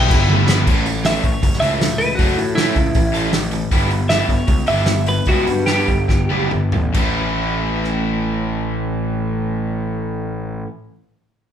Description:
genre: indie rock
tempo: 134-159 BPM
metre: 4/4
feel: straight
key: A mixolydian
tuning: A4 = 441 Hz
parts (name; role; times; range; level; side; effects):
- twelve-string electric guitar; melody; 0.0-6.5 s; E4 to G5; -20 LUFS; equal; none
- overdriven combo organ; sustained chords; 0.0-0.6 s; G4 to E6; -32 LUFS; left 1 dB; none
- cranked stack guitar; riff; 0.0-10.7 s; A2 to B4; -24 LUFS; left 4 dB; overdrive
- raw garage guitar; riff; 0.0-10.7 s; A2 to A4; -25 LUFS; right 5 dB; overdrive
- fuzz picked electric bass; bass; 0.0-10.6 s; F#1 to A2; -21 LUFS; equal; overdrive
- loose indie drum kit; drums; 0.1-7.9 s; crash cymbal, hi-hat, kick drum, rim click, snare drum, toms; -19 LUFS; equal; none
room: moderate large studio reverb, RT60 0.8 s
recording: band playing live in one room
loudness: -15 LUFS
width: side -9 dB against mid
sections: 0.7-6.9 A section; 6.9-10.5 B section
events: drum fill 0.3-0.7, 6.1-6.9; clean electric guitar solo 0.7-6.9; slowing down 3.7-6.9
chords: 0.0 Em/G; 0.7 A; 3.7 Em/G; 6.9 A

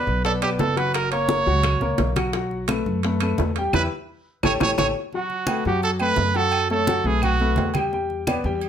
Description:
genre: latin, salsa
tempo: 172 BPM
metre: 4/4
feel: straight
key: unclear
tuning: A4 = 440 Hz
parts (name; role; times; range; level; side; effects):
- bright trumpet; melody; 0.0-7.7 s; F#4 to C#5; -23 LUFS; right 5 dB; plate reverb
- clear upright piano; accompaniment; 0.0-8.7 s; F#3 to G5; -25 LUFS; left 4 dB; none
- upright bass; bass; 0.1-8.7 s; F#1 to F#2; -25 LUFS; equal; none
- bongos; percussion; 0.1-4.9 s; none; -30 LUFS; left 6 dB; none
- congas; percussion; 0.1-8.7 s; none; -28 LUFS; left 1 dB; none
- timbales and agogo bells; percussion; 0.3-8.7 s; none; -30 LUFS; right 8 dB; none
- claves; percussion; 0.4-8.4 s; none; -34 LUFS; equal; none
room: moderate studio reverb, RT60 0.7 s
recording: none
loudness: -20 LUFS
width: side -9 dB against mid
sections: 0.0-5.1 A section; 5.1-8.7 B section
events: band accent 3.7-5.1; drum fill 4.6-5.1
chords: 0.0 E7(no3) (rootless); 0.9 F#; 2.3 B5; 3.7 Em; 4.4 A7; 5.1 B5; 6.5 F#m; 7.2 B5; 7.9 Em7

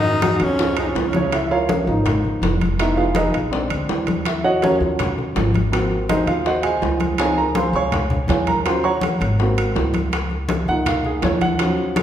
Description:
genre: Afro-Cuban jazz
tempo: 164 BPM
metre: 4/4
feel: straight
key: Db major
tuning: A4 = 440 Hz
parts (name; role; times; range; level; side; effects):
- breathy tenor saxophone; melody; 0.0-1.2 s; B3 to D#4; -22 LUFS; left 1 dB; none
- breathy baritone saxophone; second line; 0.0-1.1 s; D2 to F#2; -28 LUFS; left 4 dB; none
- warm grand piano; accompaniment; 0.0-12.0 s; C#3 to Db6; -20 LUFS; right 1 dB; none
- upright bass; bass; 0.0-12.0 s; F1 to G#2; -24 LUFS; equal; none
- congas; percussion; 0.0-12.0 s; none; -25 LUFS; left 2 dB; none
- bongos; percussion; 0.2-12.0 s; none; -28 LUFS; left 5 dB; none
- timbales; percussion; 0.2-12.0 s; none; -26 LUFS; right 5 dB; none
room: wet recital hall reverb, RT60 1.4 s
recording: recorded in a church or concert hall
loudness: -17 LUFS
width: side -10 dB against mid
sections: 0.0-1.3 A section; 1.3-12.0 B section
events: grand piano solo 1.3-12.0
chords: 0.0 G#5; 0.6 C#; 1.3 Db6; 2.8 Fm7b5; 3.5 Bb7; 4.3 Ebm9; 5.7 Ab7; 7.2 Dbmaj7; 8.7 Ebm7; 9.4 Ab7; 10.1 Db6

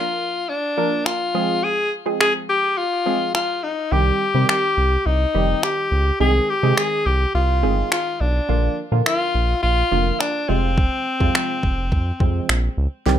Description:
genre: dance-pop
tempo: 105 BPM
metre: 4/4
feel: straight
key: unclear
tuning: A4 = 440 Hz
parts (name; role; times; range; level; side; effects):
- bright alto saxophone; melody; 0.0-12.5 s; C4 to Ab4; -20 LUFS; left 2 dB; ping-pong delay
- wavetable chord stab; accompaniment; 0.0-13.2 s; C3 to Bb4; -24 LUFS; right 2 dB; sidechain pumping
- smooth R&B drum kit; drums; 1.1-13.2 s; finger snaps, kick drum, snare drum; -21 LUFS; equal; none
- round analog bass; bass; 3.9-13.2 s; F1 to C3; -20 LUFS; equal; sidechain pumping
room: moderate small room reverb, RT60 0.5 s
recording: rough home demo mix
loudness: -17 LUFS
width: side -10 dB against mid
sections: 0.0-13.1 A section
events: none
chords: 0.0 Bb; 1.3 Fm; 3.9 Cm; 6.2 Ab/C; 8.5 Bb; 10.5 Fm

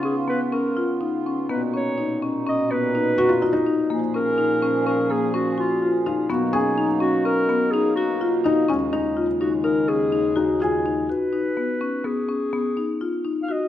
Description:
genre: contemporary instrumental, chamber music in an uneven meter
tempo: 125 BPM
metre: 5/4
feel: straight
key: G# dorian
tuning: A4 = 440 Hz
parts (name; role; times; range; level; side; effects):
- mellow clarinet; melody; 0.0-13.7 s; E#4 to E#5; -25 LUFS; equal; none
- hand-pumped harmonium; sustained chords; 0.0-11.1 s; D#2 to G#4; -28 LUFS; right 4 dB; none
- marimba with medium hard mallets; arpeggios; 0.0-13.7 s; A#3 to F#4; -22 LUFS; left 3 dB; none
- felt-muted upright piano; second line; 3.2-11.1 s; C#4 to G#4; -24 LUFS; left 2 dB; none
room: moderate concert hall reverb, RT60 2.2 s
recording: none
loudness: -20 LUFS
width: side -11 dB against mid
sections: 0.0-11.1 A section; 11.1-13.7 B section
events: none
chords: 0.0 C#7; 1.5 Bmaj7; 3.9 F#maj7/A# (rootless); 6.3 Bmaj13; 8.7 D#7sus4; 11.1 G#m7

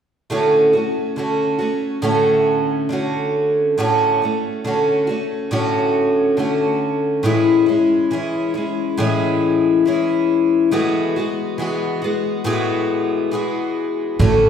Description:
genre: acoustic folk duo or small band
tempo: 69 BPM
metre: 4/4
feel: straight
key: unclear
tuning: A4 = 440 Hz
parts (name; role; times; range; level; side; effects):
- picked twelve-string acoustic guitar; accompaniment; 0.3-14.5 s; A2 to F#4; -16 LUFS; left 1 dB; none
- upright bass; bass; 14.2-14.5 s; A1; -14 LUFS; right 2 dB; none
room: wet large studio reverb, RT60 1.3 s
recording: band playing live in one room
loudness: -16 LUFS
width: side -8 dB against mid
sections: 0.3-14.2 A section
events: none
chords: 0.3 Dmaj7/A; 7.3 Amaj7; 10.7 Eadd9/A

